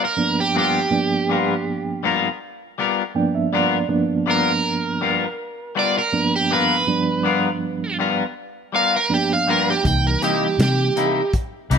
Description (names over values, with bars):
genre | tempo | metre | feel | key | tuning
straight-eighth soul blues | 81 BPM | 4/4 | swing 53% on 16ths | unclear | A4 = 441 Hz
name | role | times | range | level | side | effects
overdriven semi-hollow guitar | melody | 0.0-11.3 s | G4 to G5 | -21 LUFS | right 4 dB | slapback echo
clean electric guitar | stabs | 0.0-11.8 s | C3 to A#4 | -23 LUFS | left 7 dB | lush chorus, slapback echo
reed electric piano | accompaniment | 0.2-11.2 s | G2 to G5 | -22 LUFS | right 4 dB | fast tremolo
vintage muted fingered electric bass | bass | 9.8-11.8 s | C2 to C3 | -19 LUFS | left 1 dB | none
warm soul drum kit | drums | 9.9-11.8 s | hi-hat, kick drum, snare drum | -23 LUFS | equal | none
room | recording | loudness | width
light reverb | none | -18 LUFS | side -6 dB against mid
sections
0.0-11.8 A section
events
reed electric piano fill 2.8-3.9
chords
0.0 G7#9; 9.9 C7#9